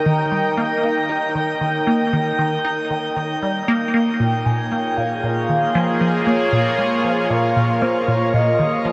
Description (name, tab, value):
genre	ambient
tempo	116 BPM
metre	4/4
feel	straight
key	Bb dorian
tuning	A4 = 439 Hz
part	sweeping resonant pad	sustained chords	0.0-8.9 s	Bb3 to G5	-23 LUFS	equal	chorus
part	resonant blip pluck	riff	0.1-8.9 s	Bb2 to Eb4	-23 LUFS	equal	phaser, lush chorus, delay
part	mellow horn-like synth lead	melody	4.2-8.9 s	C5 to Ab5	-24 LUFS	equal	subtle chorus, delay
room	wet shimmer reverb, RT60 7.5 s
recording	none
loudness	-19 LUFS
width	mono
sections	0.0-8.9 A section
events	none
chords	0.0 Eb7; 4.2 Bbm7